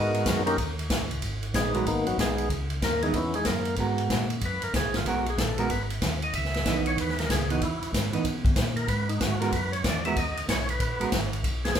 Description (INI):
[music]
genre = soul jazz organ trio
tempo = 188 BPM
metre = 4/4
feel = swing 64% on 8ths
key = G# minor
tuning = A4 = 439 Hz
[part]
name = percussive tonewheel organ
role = melody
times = 0.0-11.8 s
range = D#3 to E5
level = -29 LUFS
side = left 1 dB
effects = slow rotary speaker
[part]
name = vintage hollow-body jazz guitar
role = accompaniment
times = 0.0-11.1 s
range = E3 to D#5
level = -30 LUFS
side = right 4 dB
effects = none
[part]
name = mellow tonewheel organ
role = bass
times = 0.0-11.8 s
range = G#1 to B2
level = -31 LUFS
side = equal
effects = chorus vibrato, slow rotary speaker
[part]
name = swinging big-band drum kit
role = drums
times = 0.1-11.8 s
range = hi-hat, kick drum, ride cymbal, snare drum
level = -28 LUFS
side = equal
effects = none
[sound]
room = moderate large studio reverb, RT60 0.8 s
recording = band playing live in one room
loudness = -24 LUFS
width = side -8 dB against mid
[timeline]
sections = 0.0-1.2 A section; 1.2-11.8 A section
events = tonewheel organ solo 1.2-11.8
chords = 0.0 G#m9; 0.6 D#7; 1.2 G#m9; 2.5 C#m9; 3.8 G#m9; 6.3 C#m9; 8.9 G#m9